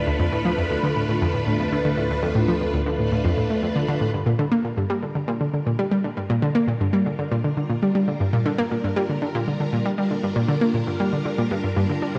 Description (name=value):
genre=ambient, sequencer-driven space music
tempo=118 BPM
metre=4/4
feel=straight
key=D dorian, G minor from 4.1 s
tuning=A4 = 439 Hz
part: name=string machine, full ensemble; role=sustained chords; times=0.0-12.2 s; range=G3 to B4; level=-29 LUFS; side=equal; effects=phaser, ensemble chorus
part: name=analog pluck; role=riff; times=0.0-12.2 s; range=D2 to D4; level=-24 LUFS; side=equal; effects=chorus, delay
part: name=analog drone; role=bass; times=0.0-4.1 s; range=D2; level=-35 LUFS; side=equal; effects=chorus
part: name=pulsing gated texture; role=texture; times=0.0-4.1 s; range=B5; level=-42 LUFS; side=equal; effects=chorus, built-in reverb
room=wet scoring stage reverb, RT60 2.0 s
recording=worn, warbling old tape, cassette tape, warbly pitch drift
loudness=-23 LUFS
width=mono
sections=0.0-4.1 A section; 4.1-12.2 B section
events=fade-in on string machine 4.1-12.2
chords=0.0 Dm; 4.1 Gm7